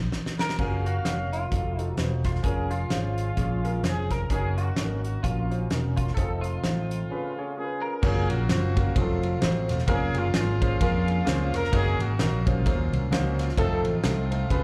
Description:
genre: uptempo gospel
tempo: 129 BPM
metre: 4/4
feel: swing 58% on 8ths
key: unclear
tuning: A4 = 445 Hz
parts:
  - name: fingered electric bass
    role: bass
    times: 0.0-14.6 s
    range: E1 to F2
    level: -29 LUFS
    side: equal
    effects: none
  - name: natural country drum kit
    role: drums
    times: 0.1-14.6 s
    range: crash cymbal, hi-hat, kick drum, ride cymbal, snare drum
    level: -31 LUFS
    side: equal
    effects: none
  - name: clean electric guitar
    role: melody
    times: 0.4-8.0 s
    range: F4 to Bb4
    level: -40 LUFS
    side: equal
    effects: ensemble chorus, slapback echo
  - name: warm horn section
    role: melody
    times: 0.4-14.6 s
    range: Ab3 to F5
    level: -35 LUFS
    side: equal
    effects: slapback echo
  - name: warm grand piano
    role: accompaniment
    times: 0.6-14.6 s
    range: Db3 to F5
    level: -34 LUFS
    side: equal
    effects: slapback echo
room: little or no reverb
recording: live gig heard through the venue's PA, club reverb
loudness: -26 LUFS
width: mono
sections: 0.6-8.0 A section; 8.0-14.6 B section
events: drum fill 0.0-0.6; band accent 0.0-0.6; break 7.1-8.0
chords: 0.0 N.C.; 0.6 Gbmaj7; 1.5 F7b9; 2.4 Bbm7/F; 4.3 Gb6; 6.2 F7; 7.1 Db7; 8.0 Gbmaj7; 9.0 F7b9; 9.9 Bbm7/F; 11.7 Gb6; 13.6 F7

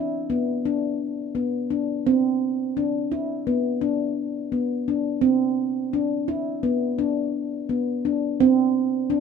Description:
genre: progressive instrumental, progressive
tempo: 170 BPM (eighths)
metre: 9/8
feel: straight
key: unclear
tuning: A4 = 436 Hz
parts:
  - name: handpan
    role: solo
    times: 0.0-9.2 s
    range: B3 to E4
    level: -21 LUFS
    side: equal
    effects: none
room: moderate studio reverb, RT60 0.6 s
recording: minimal, uncompressed stereo recording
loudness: -21 LUFS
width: side -6 dB against mid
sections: 0.0-9.2 A section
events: none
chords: none

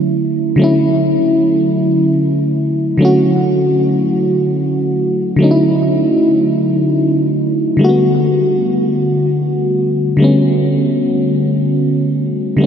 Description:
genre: R&B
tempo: 50 BPM (dotted quarters)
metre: 6/8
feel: straight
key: D major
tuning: A4 = 436 Hz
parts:
  - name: FM electric piano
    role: solo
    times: 0.0-12.7 s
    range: D3 to F#4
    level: -12 LUFS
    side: equal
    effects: chorus, analog delay
room: wet huge ambient reverb, RT60 7.2 s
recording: dreamy mix soaked in reverb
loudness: -12 LUFS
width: side -8 dB against mid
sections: 0.0-12.7 A section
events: none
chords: 0.0 Dmaj9; 7.8 Gmaj9

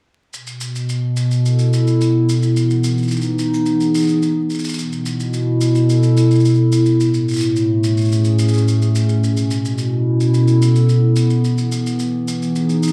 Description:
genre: folktronica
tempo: 108 BPM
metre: 4/4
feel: straight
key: B mixolydian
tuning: A4 = 439 Hz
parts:
  - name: warbly tape-like pad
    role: sustained chords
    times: 0.6-12.9 s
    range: A2 to A4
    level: -17 LUFS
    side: equal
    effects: chorus, built-in reverb
  - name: shaker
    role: drums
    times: 0.3-12.9 s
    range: none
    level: -32 LUFS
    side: equal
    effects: none
room: wet studio reverb, RT60 0.6 s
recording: dark, warm production, vinyl crackle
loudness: -16 LUFS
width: mono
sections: 0.3-12.9 A section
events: none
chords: 0.3 B7sus4; 2.6 Emaj7; 4.8 B7sus4; 7.0 Amaj7; 9.2 B7sus4; 11.4 Emaj7

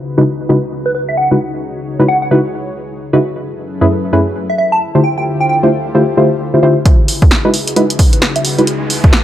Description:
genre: UK garage, two-step garage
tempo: 132 BPM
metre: 4/4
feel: swing 61% on 16ths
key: C# minor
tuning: A4 = 442 Hz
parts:
  - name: warm analog pad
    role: sustained chords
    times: 0.0-9.2 s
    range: C#3 to C#5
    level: -22 LUFS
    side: left 2 dB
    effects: chorus, sidechain pumping
  - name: deep mellow chord stab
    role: stabs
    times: 0.2-8.6 s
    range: F#2 to C5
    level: -13 LUFS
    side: equal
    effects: chorus, tape echo
  - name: plucky unison lead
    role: melody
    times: 0.9-8.6 s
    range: B4 to A5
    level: -16 LUFS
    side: right 1 dB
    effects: tape echo
  - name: electronic kick drum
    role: drums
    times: 6.9-9.1 s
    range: none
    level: -9 LUFS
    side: equal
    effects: none
  - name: punchy analog drum machine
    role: drums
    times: 6.9-9.2 s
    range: hi-hat, snare drum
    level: -16 LUFS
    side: right 1 dB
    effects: low-pass filter on hats, low-pass filter on snare
  - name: riser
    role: sound effects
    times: 7.7-9.2 s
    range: none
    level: -27 LUFS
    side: right 1 dB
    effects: none
room: light reverb, digital ambience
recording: low-pass filter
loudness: -10 LUFS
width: side -12 dB against mid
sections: 0.0-6.9 A section; 6.9-9.2 B section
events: filter sweep on synth stab 0.0-6.9; filter sweep on analog synth pad 0.0-6.9; filter sweep 0.0-6.9; build-up 6.9-9.2; filter sweep on digital synth lead 6.9-9.2; riser 7.7-9.2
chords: 0.0 C#m11; 3.2 F#m11; 4.8 Dm11; 6.9 C#m11

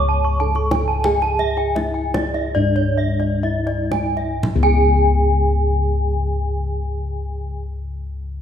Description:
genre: Balinese gamelan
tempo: 56-102 BPM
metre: 4/4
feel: straight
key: unclear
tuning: A4 = 443 Hz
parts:
  - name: gamelan-type bronze metallophone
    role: melody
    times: 0.0-7.6 s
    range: D4 to C#5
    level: -25 LUFS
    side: right 4 dB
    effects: none
  - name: gamelan-type bronze metallophone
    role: arpeggios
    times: 0.0-7.6 s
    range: C#5 to A5-40c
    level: -24 LUFS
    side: right 5 dB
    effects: none
  - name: gamelan-type bossed gongs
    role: bass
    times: 0.0-7.5 s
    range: C#2 to G#4-45c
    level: -20 LUFS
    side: left 2 dB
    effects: none
  - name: gamelan-type bronze metallophone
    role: arpeggios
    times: 0.2-7.6 s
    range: D5 to C#6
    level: -25 LUFS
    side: left 5 dB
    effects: none
  - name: kendang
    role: percussion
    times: 0.6-4.9 s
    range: none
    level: -26 LUFS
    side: equal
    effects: none
room: moderate recital hall reverb, RT60 1.7 s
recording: none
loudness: -17 LUFS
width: side -8 dB against mid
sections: 0.0-4.4 A section; 4.4-8.4 B section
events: slowing down 0.0-4.4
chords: none

